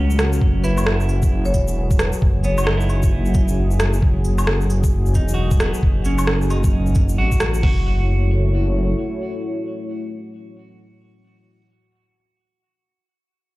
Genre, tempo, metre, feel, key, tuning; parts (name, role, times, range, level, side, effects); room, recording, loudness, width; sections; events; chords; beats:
future garage; 133 BPM; 4/4; swing 61% on 16ths; F# dorian; A4 = 441 Hz
clean electric guitar; accompaniment; 0.0-11.6 s; F#3 to F#4; -29 LUFS; right 2 dB; sidechain pumping, tape echo
dark analog pad; sustained chords; 0.0-11.6 s; F#3 to C#5; -27 LUFS; left 1 dB; chorus, vintage 12-bit sampler grit, sidechain pumping
swelling detuned saw bass; bass; 0.0-8.9 s; E1 to C#2; -19 LUFS; equal; sidechain pumping
electronic shaker, rim click, cabasa and woodblock; drums; 0.1-7.6 s; -25 LUFS; equal; overdrive
lo-fi sampler-style drum kit; drums; 0.4-7.8 s; hi-hat, kick drum, toms; -17 LUFS; equal
marimba with medium mallets; melody; 0.6-2.8 s; B4 to C#5; -28 LUFS; left 1 dB; analog delay
little or no reverb; played on a big sound system in a bare room, large studio reverb; -16 LUFS; side -19 dB against mid
0.0-7.6 A section; 7.6-11.2 B section
0.0 F#m7
| 0.41 0.86 1.32 1.77 | 2.22 2.67 3.12 3.57 | 4.02 4.47 4.92 5.38 | 5.83 6.28 6.73 7.18 | 7.63 8.08 8.53 8.99 | 9.44 9.89 10.34 10.79